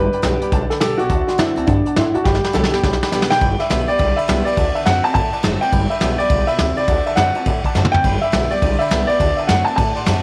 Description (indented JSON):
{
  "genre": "rockabilly",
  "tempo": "208 BPM",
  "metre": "4/4",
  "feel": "swing 63% on 8ths",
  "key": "G major",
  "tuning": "A4 = 440 Hz",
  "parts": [
    { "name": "dark upright piano", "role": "melody", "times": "0.0-10.2 s", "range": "D4 to A5", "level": "-21 LUFS", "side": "equal", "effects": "tape echo" },
    { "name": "picked steel-string acoustic guitar", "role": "accompaniment", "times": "0.0-10.2 s", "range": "G2 to G4", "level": "-28 LUFS", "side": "equal", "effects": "none" },
    { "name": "tack piano", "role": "accompaniment", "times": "0.0-10.2 s", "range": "D5 to D6", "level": "-31 LUFS", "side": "equal", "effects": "none" },
    { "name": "upright bass", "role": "bass", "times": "0.0-10.2 s", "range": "F#1 to A2", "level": "-24 LUFS", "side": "equal", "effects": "none" },
    { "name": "vintage brush drum kit", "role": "drums", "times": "0.1-10.1 s", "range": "hi-hat, kick drum, ride cymbal, snare drum, toms", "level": "-23 LUFS", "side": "equal", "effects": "none" }
  ],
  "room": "light reverb, small room ambience",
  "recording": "none",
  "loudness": "-17 LUFS",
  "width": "mono",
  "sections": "0.0-3.4 A section; 3.4-10.2 B section",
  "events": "drum fill 2.3-3.4, 7.7",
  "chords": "0.0 G; 1.1 D7; 2.3 G; 4.6 D7; 5.7 G; 6.9 D7; 8.0 G; 9.2 D7"
}